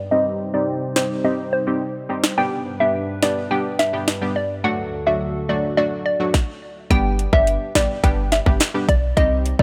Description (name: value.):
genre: dancehall.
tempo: 106 BPM.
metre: 4/4.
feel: straight.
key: G major.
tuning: A4 = 439 Hz.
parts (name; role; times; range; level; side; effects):
hollow soft pad; sustained chords; 0.0-6.3 s; D2 to C5; -31 LUFS; equal; chorus, sidechain pumping, low-pass filter.
hollow square pluck; melody; 0.1-9.6 s; C5 to G5; -24 LUFS; equal; chorus, low-pass filter.
punchy chord stab; accompaniment; 0.1-9.6 s; F#3 to G4; -27 LUFS; equal; chorus, low-pass filter.
island pop drum kit; drums; 1.0-9.6 s; hi-hat, kick drum, snare drum; -21 LUFS; equal; overdrive.
clean 808-style bass; bass; 6.9-9.6 s; G1 to C2; -24 LUFS; equal; none.
room: light reverb.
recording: none.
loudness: -20 LUFS.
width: mono.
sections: 0.0-6.9 A section; 6.9-9.6 B section.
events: filter sweep 0.0-6.9; stop 6.3-6.9.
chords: 0.1 Cm; 2.4 G; 4.6 D; 6.9 G.